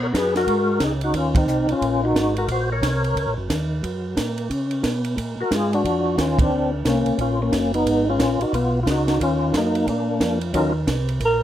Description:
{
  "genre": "soul jazz organ trio",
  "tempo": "179 BPM",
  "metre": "4/4",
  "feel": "swing 62% on 8ths",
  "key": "Eb dorian",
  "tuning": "A4 = 436 Hz",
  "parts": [
    { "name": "percussive tonewheel organ", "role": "melody", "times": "0.0-3.3, 5.4-10.7 s", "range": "Gb3 to Db5", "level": "-21 LUFS", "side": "left 1 dB", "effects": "slow rotary speaker, overdrive, chorus vibrato" },
    { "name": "tonewheel organ", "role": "bass", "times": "0.0-11.4 s", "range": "Gb1 to Db3", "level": "-24 LUFS", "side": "equal", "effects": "chorus vibrato, stopped rotary speaker" },
    { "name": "compact cocktail drum kit", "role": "drums", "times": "0.1-11.3 s", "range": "hi-hat, kick drum, ride cymbal, snare drum", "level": "-26 LUFS", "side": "right 1 dB", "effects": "none" },
    { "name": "breathy alto saxophone", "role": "melody", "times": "11.3-11.4 s", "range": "Bb4", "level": "-17 LUFS", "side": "right 2 dB", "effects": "none" }
  ],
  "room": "moderate small room ambience, RT60 0.5 s",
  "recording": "none",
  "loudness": "-19 LUFS",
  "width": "side -11 dB against mid",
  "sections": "0.0-10.5 A section",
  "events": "band accent 1.3, 6.3",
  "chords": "0.0 Abm7; 1.1 Ebm7; 5.2 Bb7#9; 7.9 Abm7; 9.2 Ebm7; 9.9 Bb; 10.5 Ebm7",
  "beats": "0.14 0.47 0.81 | 1.14 1.48 1.82 2.15 | 2.49 2.82 3.16 3.50 | 3.83 4.17 4.50 4.84 | 5.17 5.51 5.85 6.18 | 6.52 6.85 7.19 7.52 | 7.86 8.19 8.53 8.86 | 9.20 9.54 9.87 10.21 | 10.54 10.88 11.21"
}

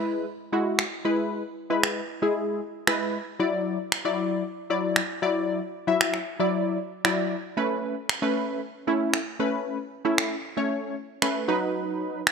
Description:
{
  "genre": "dance-pop",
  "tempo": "115 BPM",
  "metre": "4/4",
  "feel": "straight",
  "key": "unclear",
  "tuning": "A4 = 440 Hz",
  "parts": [
    { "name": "funky polysynth comp", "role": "accompaniment", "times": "0.0-12.2 s", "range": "F#3 to E5", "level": "-25 LUFS", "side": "left 1 dB", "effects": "chorus" },
    { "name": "electronic finger snaps", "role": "drums", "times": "0.8-12.3 s", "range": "none", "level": "-25 LUFS", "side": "right 1 dB", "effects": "gated reverb" }
  ],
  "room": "moderate plate reverb, RT60 2.2 s",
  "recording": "bright 1980s-style digital production",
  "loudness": "-24 LUFS",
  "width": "side -6 dB against mid",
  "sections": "0.0-12.3 A section",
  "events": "none",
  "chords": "0.0 E; 3.4 Dadd9; 7.6 Aadd9; 11.5 B",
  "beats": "0.27 0.79 | 1.31 1.83 2.35 2.88 | 3.40 3.92 4.44 4.96 | 5.48 6.01 6.53 7.05 | 7.57 8.09 8.61 9.14 | 9.66 10.18 10.70 11.22 | 11.74 12.27"
}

